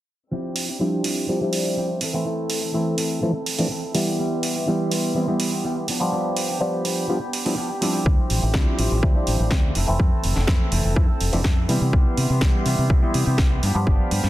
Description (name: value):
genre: filtered disco house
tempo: 124 BPM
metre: 4/4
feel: straight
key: D dorian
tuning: A4 = 440 Hz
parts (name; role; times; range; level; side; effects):
- clear studio string section; sustained chords; 0.3-14.3 s; B3 to E6; -34 LUFS; left 1 dB; sidechain pumping, low-pass filter
- clean electric guitar; riff; 0.3-14.3 s; E3 to A4; -30 LUFS; right 1 dB; sidechain pumping, low-pass filter
- house drum kit; drums; 0.6-14.3 s; hi-hat, snare drum; -27 LUFS; right 2 dB; overdrive, sidechain pumping on hats
- clav; accompaniment; 0.8-14.3 s; E3 to F4; -24 LUFS; equal; phaser, vintage 12-bit sampler grit, sidechain pumping, low-pass filter
- fingered electric bass; bass; 8.1-14.3 s; F1 to C3; -22 LUFS; equal; sidechain pumping, low-pass filter
- electronic kick drum; drums; 8.1-14.0 s; none; -19 LUFS; equal; overdrive
room: light reverb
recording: dense, heavily limited modern master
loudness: -19 LUFS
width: side -15 dB against mid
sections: 0.3-14.3 A section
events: filter sweep 0.3-14.3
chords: 0.3 Dm11; 2.0 Fmaj7 (rootless); 4.0 Cmaj7; 5.9 G7; 8.1 Dm11; 9.8 Fmaj7; 11.7 Cmaj7; 13.6 G7